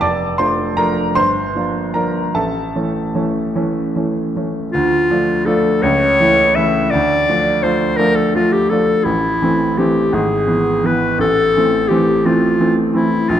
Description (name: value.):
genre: classical, romantic duo for clarinet and grand piano.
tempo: 50-58 BPM (dotted quarters).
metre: 6/8.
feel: rubato.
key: D minor.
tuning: A4 = 441 Hz.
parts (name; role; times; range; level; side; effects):
clear grand piano; accompaniment; 0.0-13.4 s; F1 to D6; -16 LUFS; right 1 dB; none.
clear clarinet; melody; 4.7-13.4 s; E4 to E5; -15 LUFS; left 2 dB; none.
room: moderate concert hall reverb, RT60 2.2 s.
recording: dark, warm production.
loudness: -13 LUFS.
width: side -10 dB against mid.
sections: 0.0-4.7 A section; 4.7-13.4 B section.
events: none.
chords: 0.0 Dm/F; 1.2 Gm7; 2.4 A; 4.7 Dm; 5.8 A/C#; 6.9 Dm; 9.1 Am; 10.1 E/G#; 11.2 Am.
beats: | 0.02 1.17 | 2.35 3.55 | 4.73 5.82 | 6.92 7.99 | 9.06 10.14 | 11.20 12.26 | 13.29.